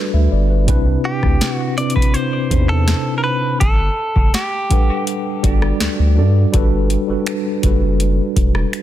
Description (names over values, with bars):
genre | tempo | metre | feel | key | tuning
contemporary R&B | 82 BPM | 4/4 | straight | G major | A4 = 442 Hz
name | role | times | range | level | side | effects
mellow tine electric piano | accompaniment | 0.0-8.8 s | C3 to F#5 | -20 LUFS | equal | medium stereo tremolo
saturated sub bass | bass | 0.1-8.6 s | E1 to G2 | -16 LUFS | equal | none
booming analog drum machine | drums | 0.7-8.8 s | finger snaps, hi-hat, kick drum, rim click, snare drum | -17 LUFS | equal | soft clipping on snare
direct-recorded clean electric guitar | melody | 1.1-5.0 s | G4 to D5 | -22 LUFS | equal | ping-pong delay
room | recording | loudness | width
digital ambience | dense, heavily limited modern master | -14 LUFS | side -12 dB against mid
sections
0.0-6.5 A section; 6.5-8.8 B section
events
none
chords
0.0 Gmaj9; 0.7 Cmaj9; 3.6 Gmaj9